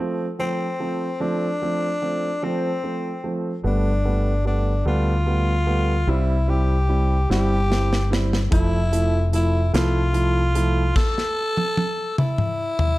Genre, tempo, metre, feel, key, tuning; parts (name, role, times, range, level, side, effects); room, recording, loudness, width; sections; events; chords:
six-eight pop ballad; 49 BPM (dotted quarters); 6/8; straight; A4 = 440 Hz
warm grand piano; accompaniment; 0.0-10.8 s; F3 to E4; -25 LUFS; right 2 dB
growling tenor saxophone; melody; 0.4-13.0 s; C4 to A4; -25 LUFS; left 1 dB; slapback echo
fingered electric bass; bass; 3.6-10.9 s; F1 to D2; -20 LUFS; equal
modern studio drum kit; drums; 7.3-13.0 s; crash cymbal, hi-hat, kick drum, snare drum, toms; -23 LUFS; equal
light reverb, small room reverb; dark, warm production; -19 LUFS; side -18 dB against mid
0.0-3.6 A section; 3.6-13.0 B section
drum fill 7.3-8.5, 11.0-13.0; stop 11.0-13.0
0.0 F; 3.6 Gadd9; 6.1 C; 8.5 Fmaj7